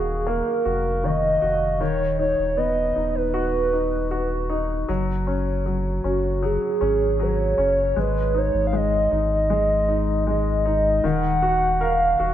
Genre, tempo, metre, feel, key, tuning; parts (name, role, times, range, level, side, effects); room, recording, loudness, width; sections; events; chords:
pop ballad; 78 BPM; 4/4; straight; Eb minor; A4 = 440 Hz
hollow clarinet-like synth lead; melody; 0.0-12.3 s; Gb4 to Gb5; -22 LUFS; right 2 dB; chorus
clear baby grand piano; accompaniment; 0.0-12.3 s; Eb3 to Bb4; -25 LUFS; left 3 dB; lush chorus
warm sub bass; bass; 0.0-12.3 s; Eb1 to Ab1; -26 LUFS; equal
wet plate reverb, RT60 2.6 s; dreamy mix soaked in reverb; -19 LUFS; side -11 dB against mid
0.0-11.0 A section; 11.0-12.3 B section
0.0 Ebm; 1.8 B/D#; 4.9 Gbsus2; 8.0 Ab5; 11.0 Ebm